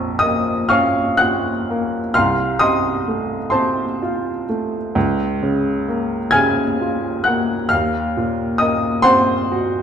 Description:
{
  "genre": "classical, romantic nocturne for solo piano",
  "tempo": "40-45 BPM (dotted quarters)",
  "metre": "12/8",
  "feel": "rubato",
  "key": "Bb minor",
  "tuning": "A4 = 440 Hz",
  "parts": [
    { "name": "warm upright piano", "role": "solo", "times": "0.0-9.8 s", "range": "Bb1 to Ab6", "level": "-16 LUFS", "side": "equal", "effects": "none" }
  ],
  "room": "moderate recital hall reverb, RT60 1.6 s",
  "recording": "dark, warm production",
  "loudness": "-16 LUFS",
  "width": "side -8 dB against mid",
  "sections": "0.0-9.8 A section",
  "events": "none",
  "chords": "0.0 Bbm; 2.2 F7/C; 5.0 Bbm/Db; 7.7 Cm7b5/Eb"
}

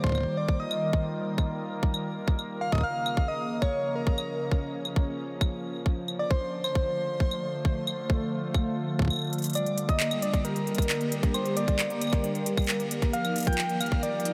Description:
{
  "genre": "IDM",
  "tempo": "134 BPM",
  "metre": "4/4",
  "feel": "straight",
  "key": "G minor",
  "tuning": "A4 = 444 Hz",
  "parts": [
    { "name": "soft struck synth lead", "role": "melody", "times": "0.0-14.3 s", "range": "Bb4 to G5", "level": "-34 LUFS", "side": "equal", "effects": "chorus, cassette tape, diffuse ambient delay" },
    { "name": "warbly tape-like pad", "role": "sustained chords", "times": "0.0-14.3 s", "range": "Db3 to Bb4", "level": "-35 LUFS", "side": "equal", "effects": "chorus, built-in reverb, phaser" },
    { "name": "electronic kick drum", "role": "drums", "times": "0.0-14.0 s", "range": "none", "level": "-28 LUFS", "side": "equal", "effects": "overdrive" },
    { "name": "organic electronic drum kit", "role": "drums", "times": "0.1-14.3 s", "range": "claves, handclaps, hi-hat", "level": "-36 LUFS", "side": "equal", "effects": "overdrive, diffuse ambient delay" },
    { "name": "vibraphone with soft mallets", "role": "arpeggios", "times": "9.6-14.3 s", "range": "F3 to G4", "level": "-35 LUFS", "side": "equal", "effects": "tape echo" }
  ],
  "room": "wet huge ambient reverb, RT60 7.6 s",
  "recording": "dreamy mix soaked in reverb",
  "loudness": "-28 LUFS",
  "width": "mono",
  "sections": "0.0-14.3 A section",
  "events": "kick drops out 9.1-9.6; drum fill 9.3",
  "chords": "0.0 Ebadd9; 2.4 Bbm; 6.0 Dm; 9.6 Gm; 13.1 Ebadd9"
}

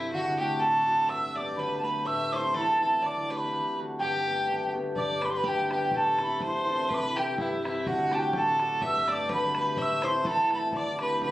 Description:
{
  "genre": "celtic folk, Celtic polka",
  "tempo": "124 BPM",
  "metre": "2/4",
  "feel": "swing 55% on 8ths",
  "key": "G major",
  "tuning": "A4 = 440 Hz",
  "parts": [
    { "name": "mellow hollow wooden whistle", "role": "melody", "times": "0.0-11.3 s", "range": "E5 to E6", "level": "-27 LUFS", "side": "right 1 dB", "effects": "none" },
    { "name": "clear fiddle", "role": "second line", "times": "0.0-11.3 s", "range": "E4 to E5", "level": "-33 LUFS", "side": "left 1 dB", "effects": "none" },
    { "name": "concert harp", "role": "accompaniment", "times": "0.0-11.3 s", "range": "D2 to A4", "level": "-31 LUFS", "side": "left 1 dB", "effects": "none" },
    { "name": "bodhran", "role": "percussion", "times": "5.0-11.3 s", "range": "none", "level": "-40 LUFS", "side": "equal", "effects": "none" }
  ],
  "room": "moderate studio reverb, RT60 0.8 s",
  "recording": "recorded on a phone in the room, club reverb",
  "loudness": "-25 LUFS",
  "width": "side -15 dB against mid",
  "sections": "0.0-5.0 A section; 5.0-11.3 A section",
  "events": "none",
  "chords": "0.1 D; 1.1 Gadd9; 2.1 Am; 3.0 Dsus4; 3.5 D; 4.0 Gadd9; 5.0 G; 5.9 Am; 6.9 C; 7.9 D; 8.8 Gadd9; 9.8 Am; 10.7 Dsus4"
}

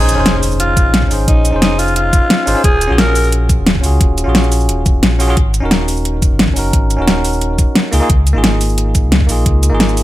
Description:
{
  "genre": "liquid drum and bass",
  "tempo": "176 BPM",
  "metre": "4/4",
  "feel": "straight",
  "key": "Bb minor",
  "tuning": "A4 = 440 Hz",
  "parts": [
    { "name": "raspy alto saxophone", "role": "melody", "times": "0.0-3.3 s", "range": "Eb4 to Bb4", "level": "-17 LUFS", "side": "equal", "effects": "vintage 12-bit sampler grit, digital delay" },
    { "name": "bell-like tine electric piano", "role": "accompaniment", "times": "0.0-10.0 s", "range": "Bb3 to C5", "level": "-18 LUFS", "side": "equal", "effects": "digital delay" },
    { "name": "sub bass with octave", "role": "bass", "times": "0.0-10.0 s", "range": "Eb1 to Db2", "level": "-15 LUFS", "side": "equal", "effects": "none" },
    { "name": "impact", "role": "sound effects", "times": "0.0-1.3 s", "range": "none", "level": "-26 LUFS", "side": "equal", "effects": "none" },
    { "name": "pop drum kit", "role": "drums", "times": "0.1-10.0 s", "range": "cabasa, hi-hat, snare drum", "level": "-15 LUFS", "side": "equal", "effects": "overdrive" },
    { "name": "electronic kick drum", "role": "drums", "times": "0.8-9.5 s", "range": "none", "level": "-13 LUFS", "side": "equal", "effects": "none" }
  ],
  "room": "little or no reverb",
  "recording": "none",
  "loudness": "-10 LUFS",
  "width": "side -15 dB against mid",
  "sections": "0.0-10.0 A section",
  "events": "impact 0.0-1.3",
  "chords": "0.0 Bbm11; 2.6 Ebm11; 5.4 Ab9sus4; 7.9 Db6"
}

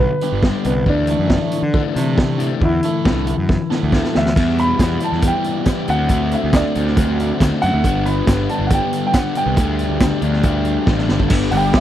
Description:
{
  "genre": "indie rock",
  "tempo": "138 BPM",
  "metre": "4/4",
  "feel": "straight",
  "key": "unclear",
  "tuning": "A4 = 443 Hz",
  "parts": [
    { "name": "warm upright piano", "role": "melody", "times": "0.0-11.8 s", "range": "B3 to B5", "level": "-23 LUFS", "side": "right 1 dB", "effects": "none" },
    { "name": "overdriven semi-hollow guitar", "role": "riff", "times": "0.0-11.8 s", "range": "G2 to F#4", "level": "-22 LUFS", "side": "left 11 dB", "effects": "none" },
    { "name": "fuzz picked electric bass", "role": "bass", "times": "0.0-11.7 s", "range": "G1 to D3", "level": "-20 LUFS", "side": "right 1 dB", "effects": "overdrive" },
    { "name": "biting overdriven guitar", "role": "riff", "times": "0.2-11.8 s", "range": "E2 to A4", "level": "-25 LUFS", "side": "right 9 dB", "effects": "wide subtle chorus, tape echo" },
    { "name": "raw garage drum kit", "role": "drums", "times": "0.2-11.8 s", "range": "crash cymbal, hi-hat, kick drum, snare drum", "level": "-18 LUFS", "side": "right 1 dB", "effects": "none" },
    { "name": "airy breathy pad", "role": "sustained chords", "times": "11.5-11.8 s", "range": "G4 to D6", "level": "-30 LUFS", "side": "right 1 dB", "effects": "chorus, phaser" }
  ],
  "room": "little or no reverb",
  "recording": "dry, close 1970s-style studio recording",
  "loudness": "-15 LUFS",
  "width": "side -12 dB against mid",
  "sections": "0.0-4.4 A section; 4.4-11.3 B section",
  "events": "drum fill 3.5-4.4, 10.9-11.3",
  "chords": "0.0 G; 0.9 Dsus2; 4.4 Em; 5.9 D7; 7.8 G; 9.6 Dsus4"
}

